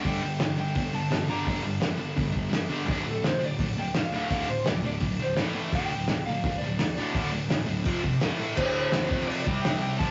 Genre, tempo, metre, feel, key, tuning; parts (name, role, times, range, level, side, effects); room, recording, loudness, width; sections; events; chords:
garage rock duo or trio; 169 BPM; 4/4; straight; D minor; A4 = 440 Hz
electric slide guitar; melody; 0.0-10.1 s; A4 to Bb5; -35 LUFS; equal
thick fuzz guitar; riff; 0.0-10.1 s; D2 to C4; -31 LUFS; equal; distortion
cloth-damped thuddy drum kit; drums; 0.1-10.1 s; crash cymbal, hi-hat, kick drum, snare drum; -31 LUFS; equal
moderate studio reverb, RT60 0.6 s; rough rehearsal-room recording, nothing above 7.8 kHz; -28 LUFS; mono
0.0-8.6 A section; 8.6-10.1 B section
0.1 G5; 2.9 D5; 5.4 A5; 5.7 D5; 7.9 F5; 8.2 A5; 8.6 D5; 9.1 F5; 9.5 C5